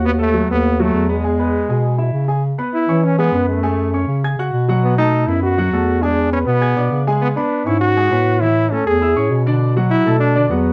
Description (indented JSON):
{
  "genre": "latin, salsa",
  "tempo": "201 BPM",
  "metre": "4/4",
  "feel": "straight",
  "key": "unclear",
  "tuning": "A4 = 438 Hz",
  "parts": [
    { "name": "warm grand piano", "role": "accompaniment", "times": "0.0-10.7 s", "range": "D3 to G#6", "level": "-24 LUFS", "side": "equal", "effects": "none" },
    { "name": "dark bass clarinet", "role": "bass", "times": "0.0-10.7 s", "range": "D#2 to E3", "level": "-20 LUFS", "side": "equal", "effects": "none" },
    { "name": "bright trombone", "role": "melody", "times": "0.1-10.7 s", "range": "G#3 to G#4", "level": "-20 LUFS", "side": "equal", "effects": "plate reverb" }
  ],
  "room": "light reverb",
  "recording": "dark, warm production",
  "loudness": "-17 LUFS",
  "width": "mono",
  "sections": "0.0-2.4 A section; 2.4-10.7 B section",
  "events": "none",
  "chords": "0.0 B7/D#; 1.2 E; 2.4 C#m7; 3.6 F#madd9; 4.8 B7; 6.0 E7; 7.2 C#5; 8.4 A; 9.6 Bm7"
}